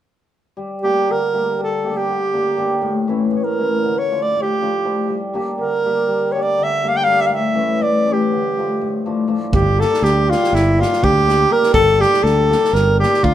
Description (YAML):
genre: balkan folk, Balkan wedding band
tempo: free time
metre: none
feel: none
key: G dorian sharp4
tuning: A4 = 440 Hz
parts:
  - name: cimbalom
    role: accompaniment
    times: 0.6-13.3 s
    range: A2 to G4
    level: -21 LUFS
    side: left 3 dB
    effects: none
  - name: clear alto saxophone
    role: melody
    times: 0.8-13.3 s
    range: E4 to G5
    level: -16 LUFS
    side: right 1 dB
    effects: none
  - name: overdriven fingered electric bass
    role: bass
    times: 9.5-13.3 s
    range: G1 to D2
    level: -18 LUFS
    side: equal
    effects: none
  - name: natural country drum kit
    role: percussion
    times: 9.5-13.3 s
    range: kick drum, snare drum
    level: -24 LUFS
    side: right 1 dB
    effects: none
room: moderate stone room reverb, RT60 1.2 s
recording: band playing live in one room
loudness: -15 LUFS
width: side -11 dB against mid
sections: 0.6-9.5 A section; 9.5-13.3 B section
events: none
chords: 0.6 Gm; 2.8 A; 3.8 Dm; 5.1 Gm; 7.3 A; 8.3 Dm; 9.5 Gm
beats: free time